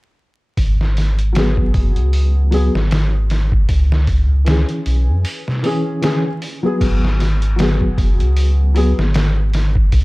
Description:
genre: trip hop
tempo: 77 BPM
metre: 4/4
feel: swing 56% on 16ths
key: G# minor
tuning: A4 = 439 Hz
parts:
  - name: warm sub bass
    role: bass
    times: 0.6-10.0 s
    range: F#1 to F#2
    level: -15 LUFS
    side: equal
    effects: none
  - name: trip hop sampler-style drum kit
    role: drums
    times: 0.6-10.0 s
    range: crash cymbal, hi-hat, kick drum, snare drum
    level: -19 LUFS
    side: equal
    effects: overdrive
  - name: felt-muted upright piano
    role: accompaniment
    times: 1.3-9.0 s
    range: E3 to G#4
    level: -21 LUFS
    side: left 1 dB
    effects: harmonic tremolo, low-pass filter, tape echo
room: little or no reverb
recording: dark, warm production, vinyl crackle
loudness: -14 LUFS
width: side -22 dB against mid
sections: 0.6-6.8 A section; 6.8-10.0 B section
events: filter sweep on felt piano 0.6-6.8; break 5.3-6.8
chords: 0.6 G#m7; 3.7 C#m; 6.8 G#m7

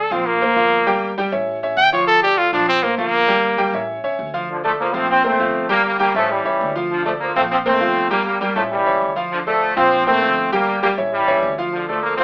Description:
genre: latin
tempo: 199 BPM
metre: 4/4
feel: straight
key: D minor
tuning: A4 = 440 Hz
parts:
  - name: clear trumpet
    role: melody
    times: 0.0-3.9 s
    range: Bb3 to G5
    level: -15 LUFS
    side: equal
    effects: none
  - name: clear grand piano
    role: accompaniment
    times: 0.0-12.2 s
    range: F3 to G5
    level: -21 LUFS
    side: equal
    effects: none
  - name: upright bass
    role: bass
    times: 0.0-12.2 s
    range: G1 to D2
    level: -36 LUFS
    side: equal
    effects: none
  - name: brilliant trombone section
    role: melody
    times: 4.5-12.2 s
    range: D3 to C4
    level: -17 LUFS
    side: equal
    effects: none
room: moderate studio ambience, RT60 0.5 s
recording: band playing live in one room, AM radio sound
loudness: -15 LUFS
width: side -26 dB against mid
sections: 0.0-4.5 A section; 4.5-12.2 B section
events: trumpet solo 0.0-4.5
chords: 0.3 Bbsus2; 0.9 Gm; 1.5 A; 2.1 Dm; 2.7 Bbsus2; 3.3 Gm; 3.9 A; 4.5 Dm; 5.1 Bbsus2; 5.7 Gm9b5; 6.3 A7; 6.9 Dm; 7.5 Bbsus2; 8.1 Gdim; 8.7 A7; 9.3 Dm; 9.9 Bbsus2; 10.5 Gm; 11.1 A7; 11.7 Dm

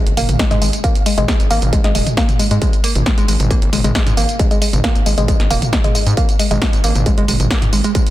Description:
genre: driving peak-time techno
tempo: 135 BPM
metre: 4/4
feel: straight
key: unclear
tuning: A4 = 439 Hz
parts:
  - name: gritty driven synth bass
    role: bass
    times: 0.1-7.8 s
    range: D#1 to G#2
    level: -18 LUFS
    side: equal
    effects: sidechain pumping
  - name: punchy analog drum machine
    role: drums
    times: 0.1-8.1 s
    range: hi-hat, snare drum, tambourine, toms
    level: -19 LUFS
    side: right 1 dB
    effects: sidechain pumping on hats, sidechain pumping on perc, sidechain pumping on toms, sidechain pumping on cymbals
  - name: woody wave-folded pluck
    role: riff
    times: 0.2-8.0 s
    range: G#3 to A#3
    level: -20 LUFS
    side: equal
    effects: chorus, sidechain pumping, digital delay
  - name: electronic kick drum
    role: drums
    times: 0.4-8.0 s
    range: none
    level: -16 LUFS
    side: equal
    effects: distortion
room: little or no reverb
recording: dense, heavily limited modern master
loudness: -13 LUFS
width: side -15 dB against mid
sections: 0.0-8.1 A section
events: none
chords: 0.0 G#5

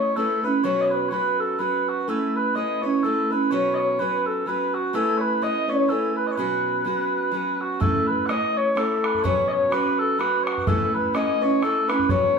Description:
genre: celtic folk, Celtic waltz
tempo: 126 BPM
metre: 3/4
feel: swing 57% on 8ths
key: unclear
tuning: A4 = 440 Hz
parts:
  - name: mellow small bagpipes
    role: melody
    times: 0.0-12.4 s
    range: F#4 to F#5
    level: -24 LUFS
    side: equal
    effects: none
  - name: mellow hollow baroque flute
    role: second line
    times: 0.0-12.4 s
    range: F#4 to D#5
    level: -26 LUFS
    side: left 4 dB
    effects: none
  - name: picked steel-string acoustic guitar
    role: accompaniment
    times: 0.0-12.4 s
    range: B2 to B4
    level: -26 LUFS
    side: right 4 dB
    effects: none
  - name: bodhran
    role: percussion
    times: 7.8-12.2 s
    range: none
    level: -28 LUFS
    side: equal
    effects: none
room: wet studio reverb, RT60 0.8 s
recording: band playing live in one room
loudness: -20 LUFS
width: side -5 dB against mid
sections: 0.0-7.8 A section; 7.8-12.4 A section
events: none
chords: 0.0 Aadd9; 0.6 Bsus2; 2.1 Aadd9; 3.5 Bsus2; 4.9 Aadd9; 6.4 Bsus2; 7.8 Aadd9; 9.2 Bsus2; 10.7 Aadd9

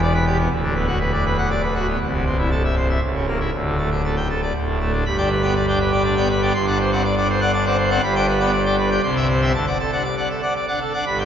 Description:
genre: classical, organ toccata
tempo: 120 BPM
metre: 3/4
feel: straight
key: G major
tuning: A4 = 440 Hz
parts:
  - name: pipe organ, full organ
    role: solo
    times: 0.0-11.2 s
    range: C1 to C6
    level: -18 LUFS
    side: equal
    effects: none
room: wet cathedral reverb, RT60 6.7 s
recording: recorded in a church or concert hall, nothing above 7.6 kHz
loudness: -18 LUFS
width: side -9 dB against mid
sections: 0.0-5.1 A section; 5.1-11.2 B section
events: none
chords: 0.0 Em7; 0.5 Bm/D; 2.0 Am/C; 3.0 C#m6; 3.5 Dsus4; 4.5 D5; 5.1 G; 6.6 D7/G; 8.0 G; 9.0 C; 9.5 D

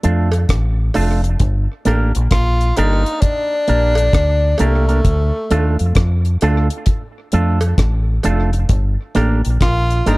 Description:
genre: roots reggae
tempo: 66 BPM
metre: 4/4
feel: swing 64% on 16ths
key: G minor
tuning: A4 = 440 Hz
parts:
  - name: electric guitar with an envelope filter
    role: accompaniment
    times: 0.0-10.2 s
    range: A3 to Bb4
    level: -21 LUFS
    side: right 3 dB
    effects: tape echo
  - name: deep dub fingered electric bass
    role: bass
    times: 0.0-10.2 s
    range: F1 to F2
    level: -15 LUFS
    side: equal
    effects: none
  - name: deep reggae drum kit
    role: drums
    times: 0.0-10.2 s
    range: hi-hat, kick drum, rim click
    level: -17 LUFS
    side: equal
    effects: none
  - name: cowbell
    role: percussion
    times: 0.3-10.2 s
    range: none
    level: -28 LUFS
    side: right 2 dB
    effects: none
  - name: bright tenor saxophone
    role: melody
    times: 2.3-10.2 s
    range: A3 to F4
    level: -19 LUFS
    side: left 1 dB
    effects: tape echo
room: light reverb, studio reverb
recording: dark, warm production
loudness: -14 LUFS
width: side -22 dB against mid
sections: 0.0-10.2 A section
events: none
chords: 0.0 Dm; 1.4 Gm; 5.0 Dm; 8.7 Gm

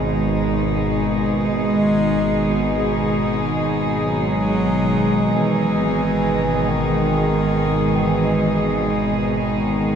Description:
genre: dark ambient drone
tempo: 46 BPM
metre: 4/4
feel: straight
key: G# minor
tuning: A4 = 439 Hz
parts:
  - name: breathy bass clarinet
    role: melody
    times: 0.0-10.0 s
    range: D#3 to G#3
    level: -22 LUFS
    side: equal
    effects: diffuse ambient delay
  - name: rich studio cello section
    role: sustained chords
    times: 0.0-10.0 s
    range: B2 to G#4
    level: -20 LUFS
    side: equal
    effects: none
  - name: bowed-like drone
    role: drone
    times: 0.0-10.0 s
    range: G#1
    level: -23 LUFS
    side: right 2 dB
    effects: built-in reverb
room: wet cathedral reverb, RT60 5.3 s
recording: dark, warm production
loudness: -17 LUFS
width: side -7 dB against mid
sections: 0.0-10.0 A section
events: none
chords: 0.0 G#m

